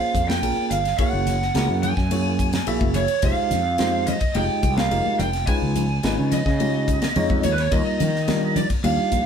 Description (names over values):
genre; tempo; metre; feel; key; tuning
electric jazz fusion; 107 BPM; 4/4; straight; unclear; A4 = 440 Hz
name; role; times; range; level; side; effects
lead guitar through a small cranked amp; melody; 0.0-9.3 s; Cb5 to Ab5; -24 LUFS; right 4 dB; overdrive
bell-like tine electric piano; accompaniment; 0.0-9.2 s; G3 to Fb5; -26 LUFS; left 1 dB; fast stereo tremolo
fretless electric bass; bass; 0.1-9.3 s; F1 to Eb3; -24 LUFS; equal; none
crisp fusion drum kit; drums; 0.1-9.3 s; hi-hat, kick drum, ride cymbal, snare drum; -26 LUFS; left 1 dB; none
congas; percussion; 0.3-9.0 s; none; -29 LUFS; left 1 dB; none
room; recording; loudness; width
moderate studio reverb, RT60 0.8 s; band playing live in one room; -19 LUFS; side -7 dB against mid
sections
0.0-9.3 A section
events
none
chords
0.0 Bbm9; 1.0 Gb9; 3.2 Fm7; 5.5 Db9; 7.7 Ebmaj7